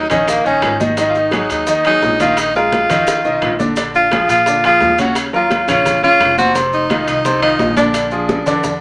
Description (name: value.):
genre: latin, salsa.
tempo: 172 BPM.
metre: 4/4.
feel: straight.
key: unclear.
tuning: A4 = 440 Hz.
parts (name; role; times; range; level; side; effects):
clear tenor saxophone; melody; 0.0-8.8 s; Bb3 to Gb4; -17 LUFS; equal; none.
bright baby grand piano; accompaniment; 0.0-8.8 s; C3 to Eb5; -20 LUFS; equal; none.
upright bass; bass; 0.0-8.8 s; F1 to Bb2; -30 LUFS; equal; none.
bongos; percussion; 0.1-8.8 s; none; -29 LUFS; equal; none.
congas; percussion; 0.1-8.8 s; none; -25 LUFS; equal; none.
maracas; percussion; 0.1-8.8 s; none; -34 LUFS; equal; none.
timbales; percussion; 0.1-8.5 s; none; -26 LUFS; equal; none.
room: moderate small room ambience, RT60 0.5 s.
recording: none.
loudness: -14 LUFS.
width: mono.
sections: 0.0-8.8 A section.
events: drum fill 3.1-3.8, 8.3-8.8.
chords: 0.0 Ab5; 2.4 Bb7sus4; 3.8 Bb7; 5.2 Ebm9; 6.6 F5; 7.9 Bb7.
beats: 0.28 0.63 | 0.98 1.32 1.67 2.02 | 2.37 2.72 3.07 3.42 | 3.77 4.12 4.46 4.81 | 5.16 5.51 5.86 6.20 | 6.55 6.90 7.25 7.59 | 7.94 8.29 8.64.